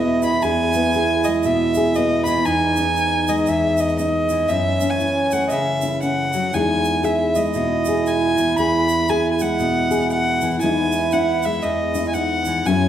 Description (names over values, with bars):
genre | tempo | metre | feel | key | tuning
acoustic folk duo or small band | 118 BPM | 4/4 | swing 62% on 8ths | E major | A4 = 440 Hz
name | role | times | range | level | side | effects
rich fiddle | melody | 0.0-12.9 s | D#5 to B5 | -21 LUFS | equal | none
mellow French horn | second line | 0.0-12.9 s | C#4 to E4 | -22 LUFS | right 4 dB | none
nylon-string guitar | accompaniment | 0.0-12.9 s | E2 to G#4 | -22 LUFS | left 3 dB | none
tube shaker | percussion | 0.2-12.8 s | none | -38 LUFS | right 7 dB | none
room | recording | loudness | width
wet recital hall reverb, RT60 1.5 s | recorded in a church or concert hall | -17 LUFS | side -10 dB against mid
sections
0.0-12.9 A section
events
none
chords
0.0 E; 2.5 Emaj7; 4.5 F#m7; 6.5 Emaj7; 10.6 Emaj9